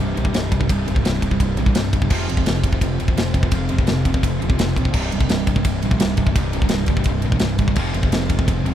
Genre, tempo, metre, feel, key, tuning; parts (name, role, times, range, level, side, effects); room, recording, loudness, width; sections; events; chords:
heavy metal; 169 BPM; 4/4; straight; C minor; A4 = 439 Hz
fuzz guitar; riff; 0.0-8.7 s; C2 to F4; -25 LUFS; right 2 dB; distortion
high-gain distorted guitar; riff; 0.0-8.7 s; C2 to F3; -27 LUFS; right 8 dB; distortion
tight distorted guitar; riff; 0.0-8.7 s; C2 to F3; -27 LUFS; left 8 dB; distortion
growling picked electric bass; bass; 0.0-8.7 s; C1 to Bb1; -24 LUFS; equal; overdrive
tight metal drum kit; drums; 0.2-8.7 s; crash cymbal, kick drum, ride cymbal, snare drum; -20 LUFS; equal
little or no reverb; rough home demo mix; -17 LUFS; side -11 dB against mid
0.0-8.7 A section
0.0 Cm; 2.1 Fm; 4.9 Cm; 7.8 Fm